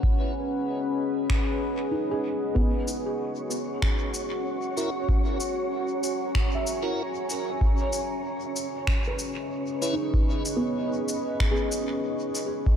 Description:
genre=ambient dub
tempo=95 BPM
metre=4/4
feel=straight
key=unclear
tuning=A4 = 440 Hz
part: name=deep dark ambient pad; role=sustained chords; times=0.0-12.8 s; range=C#4 to A#5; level=-30 LUFS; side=left 1 dB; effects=chorus, built-in reverb
part: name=felt-muted upright piano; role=arpeggios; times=0.0-12.8 s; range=B3 to E5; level=-33 LUFS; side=right 2 dB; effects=tape echo
part: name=electronic kick drum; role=drums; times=0.0-12.8 s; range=none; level=-24 LUFS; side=equal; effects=none
part: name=electronic finger snaps and shaker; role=drums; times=1.3-12.5 s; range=none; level=-34 LUFS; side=left 1 dB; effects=dub echo
part: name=wind-like tuned noise texture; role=texture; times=3.1-12.7 s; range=C#4 to C#5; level=-35 LUFS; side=right 2 dB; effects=built-in reverb
part: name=tonewheel organ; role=stabs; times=4.8-10.0 s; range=C#4 to B4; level=-35 LUFS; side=left 1 dB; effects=overdrive, slow rotary speaker, dub echo
room=light reverb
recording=none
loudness=-25 LUFS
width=side -8 dB against mid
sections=0.0-12.7 A section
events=none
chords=0.0 C#7(no3); 2.6 F#7

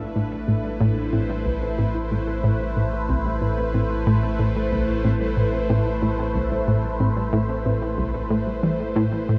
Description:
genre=ambient, sequencer-driven space music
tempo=92 BPM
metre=4/4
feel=straight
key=A minor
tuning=A4 = 440 Hz
part: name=phased analog pad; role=sustained chords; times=0.0-9.4 s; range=A3 to E5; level=-28 LUFS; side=equal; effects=phaser, chorus, shimmer reverb
part: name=warbly dusty pluck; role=arpeggios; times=0.0-9.3 s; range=G3 to A4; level=-37 LUFS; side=equal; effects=none
part: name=analog pluck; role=riff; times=0.0-9.4 s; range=C2 to E3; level=-25 LUFS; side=equal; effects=chorus, delay
part: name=warm sub bass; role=bass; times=0.0-9.4 s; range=A1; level=-32 LUFS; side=equal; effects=none
room=moderate huge ambient reverb, RT60 9.2 s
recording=worn, warbling old tape, cassette tape, warbly pitch drift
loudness=-23 LUFS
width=mono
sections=0.0-9.4 A section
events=filter sweep on synth arpeggio sound 0.0-9.4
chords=0.0 Am7

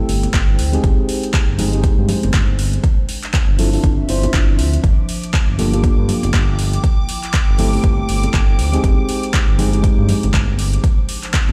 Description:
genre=deep house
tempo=120 BPM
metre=4/4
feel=swing 59% on 16ths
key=unclear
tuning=A4 = 440 Hz
part: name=mellow FM electric piano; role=stabs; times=0.0-10.8 s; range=Ab3 to C5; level=-25 LUFS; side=equal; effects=chorus, sidechain pumping, dub echo
part: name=warbly tape-like pad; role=texture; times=0.0-11.5 s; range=F3 to G5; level=-32 LUFS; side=equal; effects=chorus, built-in reverb, sidechain pumping
part: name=smooth synth bass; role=bass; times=0.1-11.5 s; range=G1 to G2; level=-20 LUFS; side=equal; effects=none
part: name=deep house drum kit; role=drums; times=0.1-11.5 s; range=handclaps, hi-hat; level=-27 LUFS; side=equal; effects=overdrive
part: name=congas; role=percussion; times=0.2-11.5 s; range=none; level=-29 LUFS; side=equal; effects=none
part: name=electronic kick drum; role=drums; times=0.3-11.5 s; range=none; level=-18 LUFS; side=equal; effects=overdrive
part: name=string machine, violins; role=texture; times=4.8-11.5 s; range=D6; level=-34 LUFS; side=equal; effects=ensemble chorus, sidechain pumping
room=little or no reverb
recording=played on a big sound system in a bare room, stone room reverb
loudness=-16 LUFS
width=mono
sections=0.0-11.5 A section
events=none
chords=0.0 Am7/G; 0.8 Abmaj7/G; 2.8 Dm9; 4.8 Gm9; 6.8 Am7; 8.8 Abmaj7/G; 10.8 Dm7

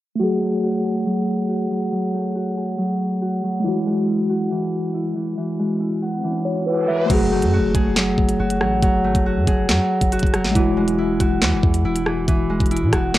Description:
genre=hip hop, drill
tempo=139 BPM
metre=4/4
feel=half-time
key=F# minor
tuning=A4 = 443 Hz
part: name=mellow tine electric piano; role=accompaniment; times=0.2-13.2 s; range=G#3 to E5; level=-23 LUFS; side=left 1 dB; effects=medium stereo tremolo, cassette tape
part: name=Celtic harp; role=arpeggios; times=0.2-13.2 s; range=E3 to G#4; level=-22 LUFS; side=equal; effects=cassette tape, analog delay
part: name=riser and impact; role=sound effects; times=6.1-8.8 s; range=none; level=-32 LUFS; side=right 1 dB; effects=none
part: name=long sustained 808-style bass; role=bass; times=7.1-13.2 s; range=E1 to B2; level=-24 LUFS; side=equal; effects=none
part: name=drill drum kit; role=drums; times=7.1-13.2 s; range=crash cymbal, handclaps, hi-hat, kick drum, rim click, snare drum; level=-20 LUFS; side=equal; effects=cassette tape
room=digital ambience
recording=home recording on cassette, low-pass filter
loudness=-18 LUFS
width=side -15 dB against mid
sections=0.2-7.1 A section; 7.1-13.2 B section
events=filter sweep 0.2-7.1; riser 6.1-7.1; tine electric piano fill 6.2-7.1; impact 7.1-8.8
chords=0.2 F#madd9; 3.6 Eadd9; 7.1 F#madd9; 10.6 Eadd9

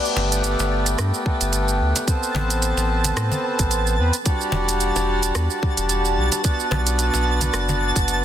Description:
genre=organic downtempo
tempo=110 BPM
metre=4/4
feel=swing 56% on 16ths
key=E minor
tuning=A4 = 438 Hz
part: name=hand-pumped harmonium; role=accompaniment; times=0.0-8.2 s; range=G3 to B4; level=-23 LUFS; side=equal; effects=sidechain pumping, tape echo
part: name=twinkling granular texture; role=texture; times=0.1-8.2 s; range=A5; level=-29 LUFS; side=right 3 dB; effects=built-in reverb
part: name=organic electronic drum kit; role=drums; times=0.1-8.2 s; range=hi-hat, rim click, shaker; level=-26 LUFS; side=right 3 dB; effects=soft clipping on snare
part: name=round analog bass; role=bass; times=0.2-8.2 s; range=E1 to A2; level=-22 LUFS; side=equal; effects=sidechain pumping
part: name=cajon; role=percussion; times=0.2-8.1 s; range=none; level=-29 LUFS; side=left 1 dB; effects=none
part: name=electronic kick drum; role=drums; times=1.3-8.1 s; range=none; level=-22 LUFS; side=equal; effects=none
room=light reverb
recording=dense, heavily limited modern master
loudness=-18 LUFS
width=side -10 dB against mid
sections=0.0-8.2 A section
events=none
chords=0.0 Gadd9; 2.1 Amadd9; 4.3 Em7; 6.4 Bm

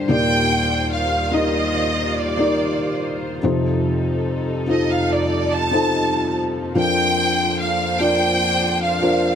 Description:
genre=pop ballad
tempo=72 BPM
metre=4/4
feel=straight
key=unclear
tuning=A4 = 440 Hz
part: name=felt-muted upright piano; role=accompaniment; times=0.0-9.4 s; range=Eb2 to Eb5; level=-20 LUFS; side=left 1 dB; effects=none
part: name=warm studio string section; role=sustained chords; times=0.0-9.4 s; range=Eb2 to C5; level=-27 LUFS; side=right 1 dB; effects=none
part: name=warm studio violin section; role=melody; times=0.1-9.4 s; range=D5 to A5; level=-21 LUFS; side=right 1 dB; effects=none
room=light reverb, small room reverb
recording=none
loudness=-17 LUFS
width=side -8 dB against mid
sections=0.0-9.4 A section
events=none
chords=0.1 Ebmaj7; 3.4 F7; 6.8 Bbadd9/F

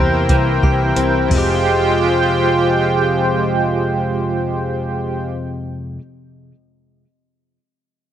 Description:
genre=dream pop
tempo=free time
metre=none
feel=none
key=F minor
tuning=A4 = 440 Hz
part: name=warm analog pad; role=sustained chords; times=0.0-5.2 s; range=Ab3 to G5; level=-17 LUFS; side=right 2 dB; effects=chorus, tremolo
part: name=direct-recorded clean electric guitar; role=arpeggios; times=0.0-6.0 s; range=F2 to G4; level=-20 LUFS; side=left 2 dB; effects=wide subtle chorus, digital delay
part: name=vintage muted fingered electric bass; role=bass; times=0.0-5.9 s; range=F1 to E2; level=-22 LUFS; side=right 1 dB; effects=none
part: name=soft vintage rhythm box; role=drums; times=0.3-1.5 s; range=crash cymbal, hi-hat, kick drum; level=-18 LUFS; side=right 1 dB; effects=none
room=wet booth ambience, RT60 0.2 s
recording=none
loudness=-14 LUFS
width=side -10 dB against mid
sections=0.0-1.7 A section; 1.7-4.5 B section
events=slowing down 0.0-1.7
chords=0.0 C7; 1.3 Fmadd9

